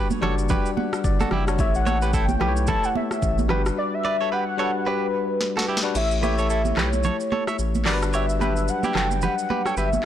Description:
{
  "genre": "afrobeats",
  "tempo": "110 BPM",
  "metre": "4/4",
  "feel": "swing 58% on 16ths",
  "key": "A mixolydian",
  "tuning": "A4 = 440 Hz",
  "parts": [
    { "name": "bell-like tine electric piano", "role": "accompaniment", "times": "0.0-10.1 s", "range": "F#3 to F#5", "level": "-28 LUFS", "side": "left 6 dB", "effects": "none" },
    { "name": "direct-recorded clean electric guitar", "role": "riff", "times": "0.0-9.9 s", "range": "E4 to E5", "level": "-28 LUFS", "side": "right 4 dB", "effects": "digital delay" },
    { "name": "afro-pop drum kit", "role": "drums", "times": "0.1-10.0 s", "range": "crash cymbal, handclaps, hi-hat, kick drum, rim click, shaker, snare drum", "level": "-27 LUFS", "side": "equal", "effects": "none" },
    { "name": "congas", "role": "percussion", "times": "0.1-10.0 s", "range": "none", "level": "-29 LUFS", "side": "right 8 dB", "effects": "none" },
    { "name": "saturated sub bass", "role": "bass", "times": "0.2-10.0 s", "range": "F#1 to B1", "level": "-25 LUFS", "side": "equal", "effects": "none" },
    { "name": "warm velvety synth lead", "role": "melody", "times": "1.6-10.1 s", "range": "B4 to A5", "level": "-26 LUFS", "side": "left 1 dB", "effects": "chorus, digital delay" }
  ],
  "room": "light reverb",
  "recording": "blown-out, overdriven recording, overdrive",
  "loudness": "-20 LUFS",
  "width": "side -11 dB against mid",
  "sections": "0.0-6.0 A section; 6.0-10.1 B section",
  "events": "tine electric piano fill 0.5-1.6; drum fill 5.4-6.0; kick muted 6.0-10.1",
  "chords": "0.0 Gmaj7; 1.6 A7; 3.5 Gmaj7; 6.0 A7; 7.9 Gmaj7",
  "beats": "0.50 1.04 | 1.59 2.13 2.68 3.22 | 3.77 4.32 4.86 5.41 | 5.95 6.50 7.04 7.59 | 8.13 8.68 9.22 9.77"
}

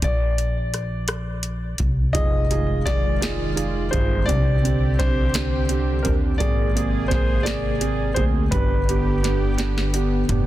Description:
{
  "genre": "six-eight pop ballad",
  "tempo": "56 BPM (dotted quarters)",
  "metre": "6/8",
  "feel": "straight",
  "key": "C minor",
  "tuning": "A4 = 438 Hz",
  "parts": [
    { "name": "clear concert grand piano", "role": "melody", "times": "0.0-9.9 s", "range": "Bb4 to Eb5", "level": "-28 LUFS", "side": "left 2 dB", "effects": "tape echo" },
    { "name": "upright bass", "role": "bass", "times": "0.0-10.5 s", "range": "F1 to Eb2", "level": "-24 LUFS", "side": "equal", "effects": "none" },
    { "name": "booming analog drum machine", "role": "drums", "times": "0.0-10.5 s", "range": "hi-hat, kick drum, rim click, snare drum, toms", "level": "-23 LUFS", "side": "equal", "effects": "soft clipping on snare" },
    { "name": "felt-muted upright piano", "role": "accompaniment", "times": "2.1-10.5 s", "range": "Bb3 to Ab4", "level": "-27 LUFS", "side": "right 9 dB", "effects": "none" },
    { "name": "warm analog pad", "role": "sustained chords", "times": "2.1-10.5 s", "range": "C3 to Ab4", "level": "-29 LUFS", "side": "left 1 dB", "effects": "chorus" }
  ],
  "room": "small room ambience",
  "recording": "dense, heavily limited modern master",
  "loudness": "-19 LUFS",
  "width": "side -14 dB against mid",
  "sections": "0.0-10.5 A section",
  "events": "drum fill 9.6-10.5",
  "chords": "0.0 Bb; 2.2 Fm7; 4.3 Csus2; 6.4 Abadd9; 8.5 G",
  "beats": "| 0.03 1.09 | 2.15 3.22 | 4.29 5.35 | 6.40 7.46 | 8.52 9.58"
}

